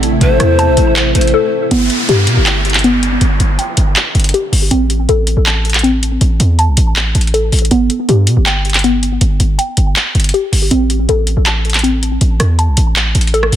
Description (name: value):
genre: hip hop, trap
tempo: 160 BPM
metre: 4/4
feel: half-time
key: unclear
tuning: A4 = 441 Hz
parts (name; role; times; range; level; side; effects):
- dark concert grand piano; accompaniment; 0.0-1.7 s; A3 to A4; -31 LUFS; left 1 dB; none
- granular cloud pad; sustained chords; 0.0-1.7 s; C3 to E4; -19 LUFS; right 1 dB; built-in reverb
- hollow square pluck; arpeggios; 0.0-13.6 s; B3 to A5; -16 LUFS; left 1 dB; chorus, low-pass filter, tape echo
- hard-hitting 808-style bass; bass; 0.0-13.6 s; G1 to B2; -13 LUFS; equal; none
- trap drum kit; drums; 0.0-13.6 s; handclaps, hi-hat, rim click; -16 LUFS; equal; vintage 12-bit sampler grit
- breathy mellow pan flute; second line; 0.2-1.7 s; C5; -16 LUFS; left 3 dB; tape echo
- downlifter; sound effects; 1.7-4.7 s; none; -20 LUFS; right 1 dB; none
room: digital ambience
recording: dense, heavily limited modern master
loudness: -10 LUFS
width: side -11 dB against mid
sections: 0.0-1.7 A section; 1.7-13.6 B section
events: drums muted 1.3-1.7; filter sweep 1.7-13.6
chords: 0.0 Am; 1.7 G; 4.7 Am; 7.7 G; 10.7 Am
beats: | 0.21 0.59 0.96 1.34 | 1.71 2.09 2.46 2.84 | 3.21 3.59 3.96 4.34 | 4.71 5.09 5.46 5.84 | 6.21 6.59 6.96 7.34 | 7.71 8.09 8.46 8.84 | 9.21 9.59 9.96 10.34 | 10.71 11.09 11.46 11.84 | 12.21 12.59 12.96 13.34